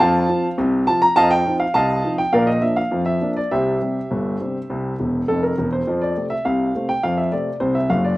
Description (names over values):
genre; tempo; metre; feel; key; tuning
ragtime piano; 103 BPM; 2/4; straight; F major; A4 = 440 Hz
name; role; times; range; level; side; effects
warm grand piano; solo; 0.0-8.2 s; E1 to Bb5; -17 LUFS; equal; slapback echo
room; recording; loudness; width
little or no reverb; recorded outdoors, with no room sound; -17 LUFS; side -18 dB against mid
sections
0.0-5.9 A section; 5.9-8.2 B section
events
grand piano fill 5.0-5.9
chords
0.0 F; 1.2 F5; 2.3 Bb; 3.5 C; 5.9 F